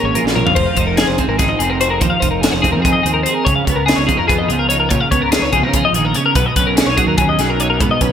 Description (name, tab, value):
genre	math rock and midwest emo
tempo	290 BPM (eighths)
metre	7/8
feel	straight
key	unclear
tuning	A4 = 440 Hz
part	twelve-string electric guitar	accompaniment	0.0-8.1 s	A#2 to C#5	-19 LUFS	right 6 dB	analog chorus
part	twelve-string electric guitar	arpeggios	0.0-8.1 s	F#4 to E#5	-16 LUFS	left 5 dB	analog chorus
part	fuzz fingered electric bass	bass	0.0-8.1 s	F1 to C#3	-21 LUFS	equal	overdrive
part	crisp fusion drum kit	drums	0.2-8.1 s	crash cymbal, hi-hat, kick drum, snare drum, toms	-18 LUFS	equal	gated reverb
room	moderate lush hall reverb, RT60 1.8 s, small room ambience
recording	bright 1980s-style digital production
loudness	-12 LUFS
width	side -8 dB against mid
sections	0.6-8.1 A section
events	drum fill 0.3-0.6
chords	0.0 A#m7; 0.6 Fm7; 3.5 C#9; 6.4 B69